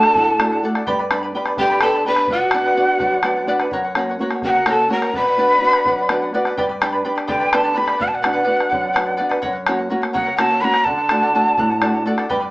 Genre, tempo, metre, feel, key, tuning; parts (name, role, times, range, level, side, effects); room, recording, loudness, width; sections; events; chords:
andean folk, Andean ensemble; 84 BPM (dotted quarters); 6/8; straight; B minor; A4 = 440 Hz
breathy quena; melody; 0.0-12.0 s; F#5 to B5; -17 LUFS; equal
breathy mellow pan flute; second line; 0.0-6.3 s; F#4 to B4; -22 LUFS; left 1 dB
charango; accompaniment; 0.0-12.5 s; G4 to B5; -22 LUFS; equal
nylon-string guitar; accompaniment; 0.0-12.5 s; F#2 to F#5; -23 LUFS; equal
bombo; percussion; 0.0-12.4 s; -24 LUFS; left 1 dB
wet studio reverb, RT60 0.5 s; band playing live in one room, small speaker sound; -15 LUFS; side -20 dB against mid
0.0-6.6 A section; 6.6-12.5 A section
nylon-string guitar fill 3.0-3.7, 5.9-6.6, 11.6-12.3
0.0 D; 0.9 G; 2.3 Bm; 3.7 F#; 5.2 Bm; 6.6 G; 8.0 Bm; 9.4 F#; 10.9 D